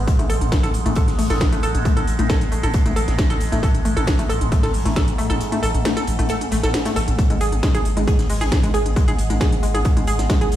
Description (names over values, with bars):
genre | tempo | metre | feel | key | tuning
driving peak-time techno | 135 BPM | 4/4 | straight | unclear | A4 = 444 Hz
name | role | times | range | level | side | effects
saturated sub bass | bass | 0.0-10.6 s | G#1 to A1 | -22 LUFS | equal | tube saturation, sidechain pumping, low-pass filter
overtone-sweeping drone | drone | 0.0-10.6 s | G#2 to G#3 | -28 LUFS | right 1 dB | chorus, built-in reverb, sidechain pumping
crisp fusion drum kit | drums | 0.1-10.6 s | hi-hat, snare drum | -38 LUFS | left 2 dB | high-pass filter on hats, high-pass filter on snare, high-pass filter on room
electronic kick drum | drums | 0.1-10.4 s | none | -18 LUFS | equal | none
techno drum kit | drums | 0.1-10.6 s | hi-hat, snare drum, toms | -26 LUFS | left 1 dB | sidechain pumping on hats, sidechain pumping on cymbals, sidechain pumping on toms
analog pluck | riff | 0.2-10.4 s | G#3 to A4 | -24 LUFS | left 1 dB | chorus, sidechain pumping, tape echo
room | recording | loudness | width
little or no reverb | played on a big sound system in a bare room, stone room reverb | -17 LUFS | side -12 dB against mid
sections
0.0-10.6 A section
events
kick drops out 5.4-7.2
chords
none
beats
| 0.07 0.52 0.96 1.41 | 1.85 2.30 2.74 3.19 | 3.63 4.08 4.52 4.96 | 5.41 5.85 6.30 6.74 | 7.19 7.63 8.07 8.52 | 8.96 9.41 9.85 10.30